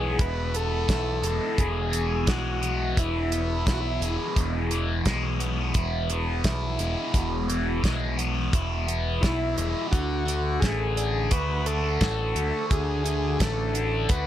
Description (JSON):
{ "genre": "psychedelic rock", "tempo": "86 BPM", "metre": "4/4", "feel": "straight", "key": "E mixolydian", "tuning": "A4 = 440 Hz", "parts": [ { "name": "combo organ", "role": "melody", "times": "0.0-4.2, 9.2-14.3 s", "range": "E4 to B4", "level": "-30 LUFS", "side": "left 2 dB", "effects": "slapback echo" }, { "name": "biting overdriven guitar", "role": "riff", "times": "0.0-14.3 s", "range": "E2 to F#4", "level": "-28 LUFS", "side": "equal", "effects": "phaser" }, { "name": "growling picked electric bass", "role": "bass", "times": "0.0-14.3 s", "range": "E1 to D2", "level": "-28 LUFS", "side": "equal", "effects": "overdrive" }, { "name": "damped 70s drum kit", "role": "drums", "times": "0.2-14.3 s", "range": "hi-hat, kick drum, snare drum", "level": "-25 LUFS", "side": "equal", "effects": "none" } ], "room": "studio ambience", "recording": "none", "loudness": "-23 LUFS", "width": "side -12 dB against mid", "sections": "0.0-14.3 A section", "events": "none", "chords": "0.0 E; 9.9 D" }